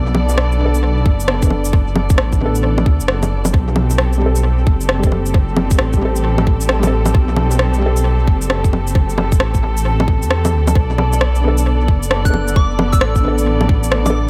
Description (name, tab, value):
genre	future garage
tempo	133 BPM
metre	4/4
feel	swing 63% on 16ths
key	B phrygian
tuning	A4 = 439 Hz
part	felt-muted upright piano	accompaniment	0.0-8.6, 11.4-14.3 s	D3 to A4	-26 LUFS	equal	sidechain pumping, dub echo
part	muted chamber string section	sustained chords	0.0-14.3 s	B3 to D5	-26 LUFS	equal	sidechain pumping
part	dark detuned saw bass	bass	0.0-14.3 s	F#1 to E2	-19 LUFS	equal	sidechain pumping
part	electronic bongos, shaker and rim click	drums	0.1-14.1 s	none	-22 LUFS	equal	overdrive, studio reverb, tape echo
part	electronic kick drum	drums	1.1-13.8 s	none	-16 LUFS	equal	studio reverb
part	backwards swelling texture	texture	11.7-14.3 s	A4	-33 LUFS	equal	none
part	soft synth bell	melody	12.3-14.2 s	D6 to F#6	-27 LUFS	equal	chorus, phaser, tape echo
room	digital ambience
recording	echo-heavy mix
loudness	-15 LUFS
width	mono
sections	0.0-14.3 A section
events	none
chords	0.0 Bm7; 3.5 Am7; 10.8 Bm7